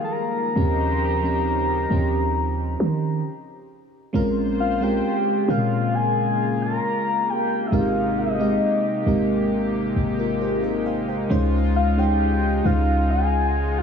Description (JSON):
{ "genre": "R&B", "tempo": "67 BPM", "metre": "4/4", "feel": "straight", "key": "Bb dorian", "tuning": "A4 = 440 Hz", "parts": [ { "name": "soft octave-layered synth lead", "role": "melody", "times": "0.0-13.8 s", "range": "Eb5 to Bb5", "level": "-24 LUFS", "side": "left 2 dB", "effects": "chorus, phaser, tape echo" }, { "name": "mellow FM electric piano", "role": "accompaniment", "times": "0.0-13.8 s", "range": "F3 to G5", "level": "-25 LUFS", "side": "right 1 dB", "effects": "chorus" }, { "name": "warm analog pad", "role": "sustained chords", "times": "0.0-13.8 s", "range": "C3 to C5", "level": "-27 LUFS", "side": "left 1 dB", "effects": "chorus" }, { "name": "warm 808-style bass", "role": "bass", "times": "0.6-13.8 s", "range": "Ab1 to Eb3", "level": "-24 LUFS", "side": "equal", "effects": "none" } ], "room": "moderate plate reverb, RT60 3.1 s", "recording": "dreamy mix soaked in reverb, small room ambience", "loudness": "-19 LUFS", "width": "side -7 dB against mid", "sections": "0.0-4.1 A section; 4.1-13.8 B section", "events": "stop 3.2-4.1", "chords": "0.0 Fm11; 0.6 Eb13; 4.1 Bbm9; 7.7 Abmaj9; 11.3 Dbmaj9" }